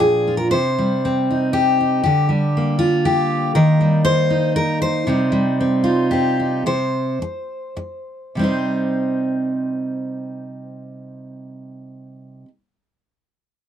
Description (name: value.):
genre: folk, solo fingerstyle acoustic guitar.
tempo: 98-121 BPM.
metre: 3/4.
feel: rubato.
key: C minor.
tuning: A4 = 440 Hz.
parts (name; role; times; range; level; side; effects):
fingerpicked steel-string acoustic guitar; solo; 0.0-12.5 s; Bb2 to C5; -17 LUFS; equal; none.
room: little or no reverb.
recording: dry, close 1970s-style studio recording.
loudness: -16 LUFS.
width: side -9 dB against mid.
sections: 0.0-6.7 A section; 6.7-8.3 B section; 8.3-11.9 C section.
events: slowing down 5.1-8.3.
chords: 0.0 Bb; 0.5 Cm; 2.1 Gm/D; 3.5 Eb; 5.1 Cm; 6.7 C5; 8.3 Cm.